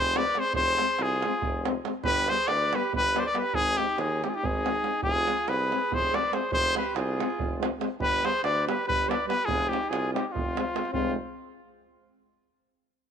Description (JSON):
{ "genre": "balkan folk, Balkan brass band", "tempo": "283 BPM (eighths)", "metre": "7/8", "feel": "straight", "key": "F dorian sharp4", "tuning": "A4 = 440 Hz", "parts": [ { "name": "warm trumpet", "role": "melody", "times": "0.0-11.2 s", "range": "F4 to D5", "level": "-26 LUFS", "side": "left 2 dB", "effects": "none" }, { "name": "warm alto saxophone", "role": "second line", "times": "0.0-11.2 s", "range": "C4 to B4", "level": "-36 LUFS", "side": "right 12 dB", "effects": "none" }, { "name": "clear tuba", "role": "bass", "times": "0.0-11.2 s", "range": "F1 to Eb2", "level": "-33 LUFS", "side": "equal", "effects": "none" }, { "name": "mellow euphonium", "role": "accompaniment", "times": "0.1-11.2 s", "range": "G3 to Ab3", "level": "-39 LUFS", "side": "right 13 dB", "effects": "none" }, { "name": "warm French horn", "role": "accompaniment", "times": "0.2-11.2 s", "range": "B3 to C4", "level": "-36 LUFS", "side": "left 14 dB", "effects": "none" }, { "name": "davul", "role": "percussion", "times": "0.2-11.2 s", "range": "none", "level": "-34 LUFS", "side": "right 6 dB", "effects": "none" } ], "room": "moderate echo chamber reverb, RT60 2.1 s", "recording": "1960s-style stereo with parts hard left and right", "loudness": "-24 LUFS", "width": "side -8 dB against mid", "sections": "0.0-10.9 A section; 10.9-12.4 B section", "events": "speeding up 0.0-12.4", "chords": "0.0 Fm; 2.0 G; 3.5 Ab; 5.0 Fm; 8.0 G; 9.5 Fm" }